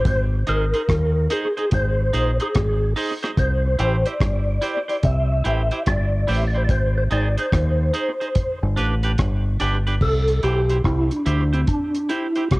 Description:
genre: roots reggae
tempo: 72 BPM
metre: 4/4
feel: swing 64% on 16ths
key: unclear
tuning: A4 = 440 Hz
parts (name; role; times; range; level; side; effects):
- percussive tonewheel organ; melody; 0.0-12.6 s; C4 to E5; -23 LUFS; equal; chorus vibrato, fast rotary speaker, tape echo
- deep dub fingered electric bass; bass; 0.1-12.6 s; G1 to Eb2; -20 LUFS; equal; none
- deep reggae drum kit; drums; 0.1-12.6 s; crash cymbal, hi-hat, kick drum, rim click; -24 LUFS; equal; none
- clean electric guitar; accompaniment; 0.5-12.4 s; D4 to C5; -28 LUFS; right 2 dB; cassette tape, tape echo
room: light reverb, studio reverb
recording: home recording on cassette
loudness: -18 LUFS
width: side -22 dB against mid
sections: 0.0-10.0 A section; 10.0-12.6 B section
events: tonewheel organ solo 10.0-12.6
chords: 0.1 Ab; 3.4 C; 6.7 Ab; 8.4 G; 10.0 C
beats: | 0.06 0.89 1.72 2.54 | 3.37 4.20 5.03 5.86 | 6.69 7.52 8.35 9.19 | 10.02 10.85 11.68 12.51

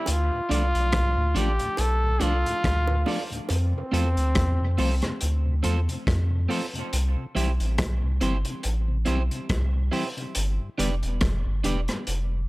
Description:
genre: dub reggae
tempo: 70 BPM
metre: 4/4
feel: swing 57% on 16ths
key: D dorian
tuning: A4 = 440 Hz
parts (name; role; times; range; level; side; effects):
- brilliant trombone; melody; 0.0-5.2 s; C4 to A4; -28 LUFS; equal; dub echo
- warm sub bass; bass; 0.1-12.5 s; E1 to F2; -24 LUFS; equal; none
- crunchy breakbeat drum kit; drums; 0.1-12.3 s; hi-hat, kick drum, rim click; -29 LUFS; equal; none
- bongos; percussion; 0.1-3.7 s; none; -38 LUFS; right 4 dB; high-pass filter on perc, dub echo
- mellow tonewheel organ; accompaniment; 0.3-12.4 s; D2 to D4; -34 LUFS; left 3 dB; slow rotary speaker, high-pass filter, dub echo
- electric guitar at the edge of break-up; accompaniment; 0.5-11.9 s; C4 to D5; -32 LUFS; right 4 dB; tremolo, high-pass filter, dub echo
room: studio ambience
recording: none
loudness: -22 LUFS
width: side -20 dB against mid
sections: 0.0-12.5 A section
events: part muted 3.5-12.5; filter sweep 10.4-12.5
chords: 0.1 Dm; 3.5 F; 6.9 C; 10.4 G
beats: | 0.07 0.93 1.79 2.64 | 3.50 4.36 5.21 6.07 | 6.93 7.79 8.64 9.50 | 10.36 11.21 12.07

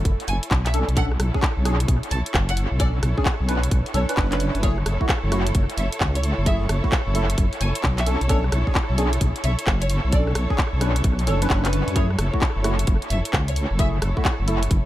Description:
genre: UK garage, two-step garage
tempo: 131 BPM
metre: 4/4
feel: swing 65% on 16ths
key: F# minor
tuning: A4 = 441 Hz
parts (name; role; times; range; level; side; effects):
- deep soft wobble bass; bass; 0.0-14.8 s; F#1 to F#2; -22 LUFS; equal; chorus
- clear studio string section; texture; 0.0-14.9 s; E4 to C#5; -32 LUFS; right 1 dB; sidechain pumping
- electronic kick drum; drums; 0.1-14.8 s; none; -22 LUFS; equal; none
- garage drum kit; drums; 0.1-14.8 s; handclaps, hi-hat, rim click; -27 LUFS; equal; dub echo
- warm chamber violin section; melody; 0.3-13.9 s; B4 to A5; -32 LUFS; equal; analog delay
- percussive organ stab; stabs; 0.7-14.6 s; A3 to B4; -29 LUFS; equal; ensemble chorus, vintage 12-bit sampler grit, dub echo
room: little or no reverb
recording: echo-heavy mix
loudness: -19 LUFS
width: side -14 dB against mid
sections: 0.0-14.9 A section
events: none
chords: 0.0 F#m7; 0.7 Bm9; 4.6 F#m9; 8.1 Bm9; 12.0 F#m9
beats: 0.05 0.51 | 0.97 1.43 1.88 2.34 | 2.80 3.26 3.71 4.17 | 4.63 5.09 5.55 6.00 | 6.46 6.92 7.38 7.84 | 8.29 8.75 9.21 9.67 | 10.13 10.59 11.04 11.50 | 11.96 12.42 12.88 13.33 | 13.79 14.25 14.71

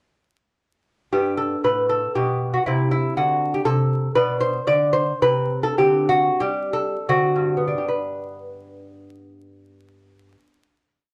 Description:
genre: classical, baroque-style dance for lute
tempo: 74-120 BPM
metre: 3/4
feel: rubato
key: G major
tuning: A4 = 440 Hz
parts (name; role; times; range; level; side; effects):
- lute; solo; 1.1-10.9 s; G2 to D5; -21 LUFS; equal; none
room: wet studio reverb, RT60 0.6 s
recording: dark, warm production, vinyl crackle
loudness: -21 LUFS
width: mono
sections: 1.1-7.9 A section; 7.9-11.1 final chord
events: slowing down 3.4-7.9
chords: 1.1 G; 2.7 Am/C; 4.2 Bm; 5.2 N.C.; 5.8 D7sus4; 7.1 D7; 7.9 G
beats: | 1.13 1.66 2.17 | 2.67 3.18 3.69 | 4.19 4.70 5.24 | 5.80 6.42 7.11 | 7.89 8.66 9.43 | 10.19

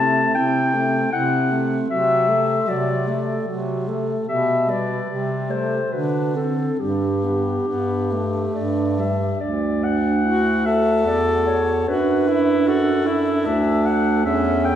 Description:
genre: classical, lyrical piece for single-reed quartet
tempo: 68-78 BPM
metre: 3/4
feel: rubato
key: G major, D major from 9.4 s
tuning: A4 = 441 Hz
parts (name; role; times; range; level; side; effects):
- mellow clarinet; melody; 0.0-14.8 s; G4 to A5; -22 LUFS; left 2 dB; none
- mellow alto saxophone; second line; 0.0-14.8 s; C4 to B4; -26 LUFS; right 6 dB; none
- warm tenor saxophone; accompaniment; 0.0-14.8 s; F#3 to A4; -24 LUFS; left 1 dB; none
- clear bass clarinet; bass; 0.0-14.8 s; D2 to D3; -24 LUFS; right 1 dB; none
room: wet concert hall reverb, RT60 1.9 s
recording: heard from further back in the room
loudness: -18 LUFS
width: side -10 dB against mid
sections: 0.0-9.4 A section; 9.4-14.8 B section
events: none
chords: 0.0 Am/C; 1.9 D7/C; 4.3 G/B; 5.1 Am7/C; 5.9 D7; 6.8 G; 9.4 D; 11.9 D/F#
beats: 0.36 1.13 | 1.90 2.68 3.48 | 4.28 5.09 5.92 | 6.80 7.68 8.56 | 9.42 10.25 11.07 | 11.89 12.68 13.47 | 14.27

